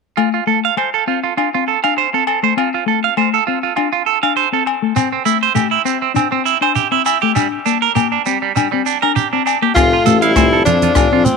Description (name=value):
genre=highlife guitar band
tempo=100 BPM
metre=4/4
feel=swing 55% on 16ths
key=F major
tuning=A4 = 440 Hz
part: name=mellow electric guitar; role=accompaniment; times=0.2-11.3 s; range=A3 to D4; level=-20 LUFS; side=left 14 dB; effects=none
part: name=semi-hollow electric guitar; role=arpeggios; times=0.2-11.2 s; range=G3 to F5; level=-16 LUFS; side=right 12 dB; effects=tape echo
part: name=agogo bells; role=percussion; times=0.2-11.1 s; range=none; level=-24 LUFS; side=left 13 dB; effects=none
part: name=shekere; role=percussion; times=5.0-11.4 s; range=none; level=-22 LUFS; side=right 6 dB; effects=none
part: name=clear tenor saxophone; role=melody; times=9.8-11.4 s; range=C4 to F4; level=-14 LUFS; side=left 2 dB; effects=tape echo
part: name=warm trombone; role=second line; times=9.8-11.4 s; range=F3 to A3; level=-22 LUFS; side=left 12 dB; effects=none
part: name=warm tuba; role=bass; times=9.8-11.2 s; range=F1 to F2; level=-18 LUFS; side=left 1 dB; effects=none
part: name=compact cocktail drum kit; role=drums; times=9.8-11.4 s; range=hi-hat, kick drum, rim click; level=-18 LUFS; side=left 1 dB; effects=none
part: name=congas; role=percussion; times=10.1-11.4 s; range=none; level=-20 LUFS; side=right 8 dB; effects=none
room=moderate spring reverb, RT60 2.5 s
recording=1960s-style stereo with parts hard left and right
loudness=-13 LUFS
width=side -4 dB against mid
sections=0.2-9.8 A section; 9.8-11.4 B section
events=none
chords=0.2 F; 5.0 C; 7.4 Gm; 9.8 F